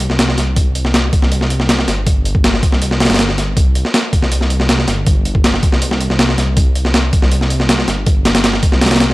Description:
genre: drum and bass, jungle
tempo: 160 BPM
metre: 4/4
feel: straight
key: unclear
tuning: A4 = 439 Hz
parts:
  - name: dark detuned saw bass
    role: bass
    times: 0.0-9.1 s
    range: G1 to C2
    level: -17 LUFS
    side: equal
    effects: none
  - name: breakbeat sampler-style drum kit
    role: drums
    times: 0.0-9.1 s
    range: hi-hat, kick drum, snare drum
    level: -13 LUFS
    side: equal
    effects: none
room: little or no reverb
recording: dry, gritty hardware recording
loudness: -12 LUFS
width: side -19 dB against mid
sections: 0.0-9.1 A section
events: none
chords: none

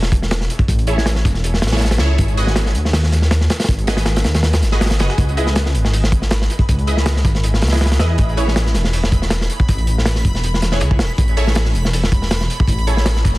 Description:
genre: drum and bass, jungle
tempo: 160 BPM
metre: 4/4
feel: swing 54% on 16ths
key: unclear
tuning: A4 = 440 Hz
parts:
  - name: dark detuned saw bass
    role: bass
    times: 0.0-13.4 s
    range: E1 to E2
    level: -17 LUFS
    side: equal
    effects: none
  - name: crunchy breakbeat drum kit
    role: drums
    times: 0.0-13.4 s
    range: hi-hat, kick drum, snare drum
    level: -18 LUFS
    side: equal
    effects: none
  - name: dusty soul sampler-style drum kit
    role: drums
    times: 0.1-13.4 s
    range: hi-hat, snare drum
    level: -32 LUFS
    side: left 1 dB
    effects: none
  - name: orchestra-hit-like synth stab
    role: stabs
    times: 0.9-13.0 s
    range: E4 to D#5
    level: -25 LUFS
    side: right 1 dB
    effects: built-in reverb, phaser, dub echo
  - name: backwards swelling texture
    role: texture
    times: 6.2-13.4 s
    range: B5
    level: -30 LUFS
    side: equal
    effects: built-in reverb
room: small room ambience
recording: dense, heavily limited modern master, vinyl crackle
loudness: -14 LUFS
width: side -19 dB against mid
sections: 0.0-13.4 A section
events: none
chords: 0.0 Eadd11; 2.2 G#m7; 5.2 C#m7; 8.2 Eadd11

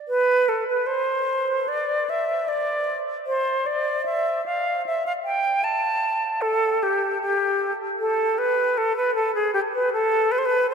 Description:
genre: classical, baroque-style fantasia for unaccompanied flute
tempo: 76 BPM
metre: 4/4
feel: rubato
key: A minor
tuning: A4 = 442 Hz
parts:
  - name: silver concert flute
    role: solo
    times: 0.1-10.7 s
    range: G4 to A5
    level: -21 LUFS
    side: equal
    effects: none
room: wet cathedral reverb, RT60 6.4 s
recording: in a vast, echoing space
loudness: -21 LUFS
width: side -6 dB against mid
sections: 0.1-10.7 A section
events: none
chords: none

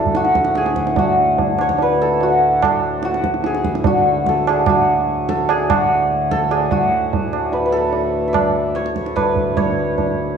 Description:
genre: indian classical, Hindustani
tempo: 147 BPM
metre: 7/4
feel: straight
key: D raga yaman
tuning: A4 = 441 Hz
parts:
  - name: santur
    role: melody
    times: 0.0-10.4 s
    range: D4 to E5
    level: -18 LUFS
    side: left 1 dB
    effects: none
  - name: pedal harmonium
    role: drone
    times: 0.0-10.4 s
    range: D2 to A2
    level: -22 LUFS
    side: equal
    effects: none
  - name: tabla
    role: percussion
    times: 0.1-10.1 s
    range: none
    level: -20 LUFS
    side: right 4 dB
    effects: none
room: wet recital hall reverb, RT60 1.4 s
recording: worn, warbling old tape, cassette tape, warbly pitch drift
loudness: -15 LUFS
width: side -7 dB against mid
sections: 0.0-6.7 A section; 6.7-10.4 B section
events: none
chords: none

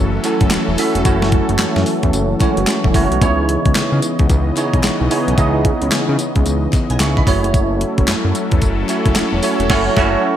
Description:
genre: R&B, new jack swing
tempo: 111 BPM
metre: 4/4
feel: swing 63% on 16ths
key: unclear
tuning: A4 = 444 Hz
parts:
  - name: bell-like tine electric piano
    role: accompaniment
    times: 0.0-10.4 s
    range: G#3 to C#6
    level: -18 LUFS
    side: right 3 dB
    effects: ensemble chorus
  - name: sweeping resonant pad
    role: sustained chords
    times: 0.0-10.4 s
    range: C#3 to D#5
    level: -22 LUFS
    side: left 5 dB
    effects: chorus
  - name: fat analog bass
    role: bass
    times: 0.0-10.2 s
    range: E1 to C#3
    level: -19 LUFS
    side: equal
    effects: none
  - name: clean 12-bit digital drum machine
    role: drums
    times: 0.2-10.1 s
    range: crash cymbal, handclaps, hi-hat, kick drum, snare drum, tambourine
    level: -17 LUFS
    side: equal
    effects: overdrive, gated reverb
  - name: group handclap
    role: percussion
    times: 0.2-9.3 s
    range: none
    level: -33 LUFS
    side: left 5 dB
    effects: none
room: light reverb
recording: bright 1980s-style digital production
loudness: -13 LUFS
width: side -10 dB against mid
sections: 0.0-10.4 A section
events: band accent 9.7-10.4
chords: 0.0 F#m7; 3.2 C#m9; 7.3 F#m7

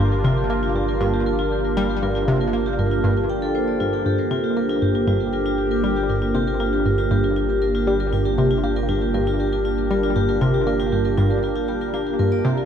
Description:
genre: ambient, sequencer-driven space music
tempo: 118 BPM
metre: 4/4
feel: straight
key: G minor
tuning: A4 = 441 Hz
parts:
  - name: sweeping resonant pad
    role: sustained chords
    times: 0.0-12.7 s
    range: Bb3 to Bb4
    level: -23 LUFS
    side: equal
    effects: chorus
  - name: vibraphone with hard mallets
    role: arpeggios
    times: 0.0-12.7 s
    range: F4 to G5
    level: -24 LUFS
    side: right 1 dB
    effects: auto-pan, low-pass filter, ping-pong delay
  - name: analog pluck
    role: riff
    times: 0.0-12.6 s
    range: G2 to Bb3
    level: -23 LUFS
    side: equal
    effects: chorus, ping-pong delay
  - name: warm sub bass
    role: bass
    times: 0.0-12.7 s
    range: G1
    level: -28 LUFS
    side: equal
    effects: none
room: moderate echo chamber reverb, RT60 2.2 s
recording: echo-heavy mix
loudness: -18 LUFS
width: side -8 dB against mid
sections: 0.0-12.7 A section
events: none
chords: 0.0 Gm

